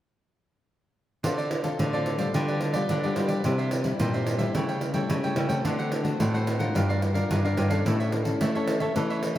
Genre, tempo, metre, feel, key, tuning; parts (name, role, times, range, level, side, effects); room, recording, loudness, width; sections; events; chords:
samba and choro; 109 BPM; 4/4; straight; D minor; A4 = 442 Hz
cavaquinho; accompaniment; 1.2-9.4 s; D4 to G5; -32 LUFS; right 2 dB
nylon-string guitar; accompaniment; 1.2-9.4 s; G2 to Bb4; -30 LUFS; left 3 dB
nylon-string guitar; bass; 1.2-9.4 s; G2 to A3; -28 LUFS; equal
pandeiro; percussion; 1.2-9.4 s; -30 LUFS; right 2 dB
moderate huge ambient reverb, RT60 8.6 s; in a vast, echoing space; -24 LUFS; side -13 dB against mid
1.2-9.4 A section
1.2 Dm7; 2.3 G7/D; 3.4 C; 4.5 A7/C#; 5.7 D7; 6.8 Gm7; 7.9 A